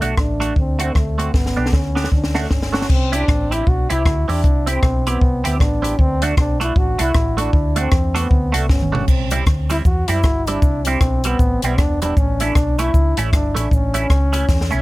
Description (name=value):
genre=ska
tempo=155 BPM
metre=4/4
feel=swing 61% on 8ths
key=unclear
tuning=A4 = 441 Hz
part: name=breathy trombone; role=melody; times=0.0-14.8 s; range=A3 to F#4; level=-22 LUFS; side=equal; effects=analog delay
part: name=clean electric guitar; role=accompaniment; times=0.0-14.8 s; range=G3 to G4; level=-23 LUFS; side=right 5 dB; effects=phaser
part: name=hollow-body short-scale fingered electric bass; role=bass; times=0.0-14.8 s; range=E1 to F#2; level=-21 LUFS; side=equal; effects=none
part: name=compact cocktail drum kit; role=drums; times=0.0-14.7 s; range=crash cymbal, hi-hat, kick drum, rim click, snare drum, toms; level=-17 LUFS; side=equal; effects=none
part: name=cabasa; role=percussion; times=9.1-14.8 s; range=none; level=-38 LUFS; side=left 6 dB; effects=none
room=little or no reverb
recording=none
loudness=-15 LUFS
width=side -19 dB against mid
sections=0.0-2.9 A section; 2.9-14.8 B section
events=drum fill 1.3-2.9, 8.7-9.1, 14.5-14.8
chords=0.0 D; 0.6 D7; 1.3 G; 2.1 D; 2.9 C; 6.0 D; 9.1 C; 12.2 A